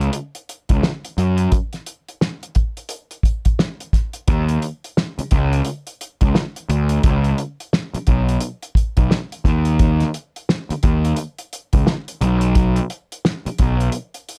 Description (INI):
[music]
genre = hip hop, boom-bap hip-hop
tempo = 87 BPM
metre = 4/4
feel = swing 62% on 16ths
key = unclear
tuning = A4 = 440 Hz
[part]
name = fuzz picked electric bass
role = bass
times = 0.0-13.9 s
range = B1 to Gb2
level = -20 LUFS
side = equal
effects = overdrive, tube saturation
[part]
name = cloth-damped thuddy drum kit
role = drums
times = 0.0-14.4 s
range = hi-hat, kick drum, snare drum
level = -21 LUFS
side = equal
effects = none
[sound]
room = little or no reverb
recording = dry, gritty hardware recording, transformer saturation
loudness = -20 LUFS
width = mono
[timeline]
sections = 0.0-4.3 A section; 4.3-14.4 B section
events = break 13.9-14.4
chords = none